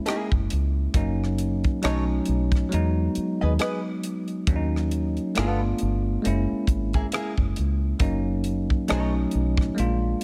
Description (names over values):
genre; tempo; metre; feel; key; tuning
R&B, neo-soul; 68 BPM; 4/4; swing 58% on 16ths; unclear; A4 = 440 Hz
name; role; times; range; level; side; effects
bell-like tine electric piano; accompaniment; 0.0-10.2 s; Gb3 to F4; -29 LUFS; equal; none
archtop guitar, miked and amplified; second line; 0.1-9.1 s; Bb3 to D#5; -33 LUFS; equal; wah
tight funk drum kit; drums; 0.1-10.2 s; hi-hat, kick drum, rim click; -28 LUFS; equal; none
deep dub fingered electric bass; bass; 0.3-10.1 s; Gb1 to E2; -28 LUFS; equal; none
room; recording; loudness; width
light reverb, studio reverb; none; -25 LUFS; mono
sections
0.0-10.2 A section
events
none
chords
0.0 Gb9; 0.9 Gb6; 1.8 B9; 2.7 Emaj7; 4.5 Ebm7; 5.4 G9; 6.2 Gb9; 8.0 Gb6; 8.9 B9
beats
0.06 | 0.94 1.82 2.71 3.59 | 4.47 5.35 6.24 7.12 | 8.00 8.88 9.77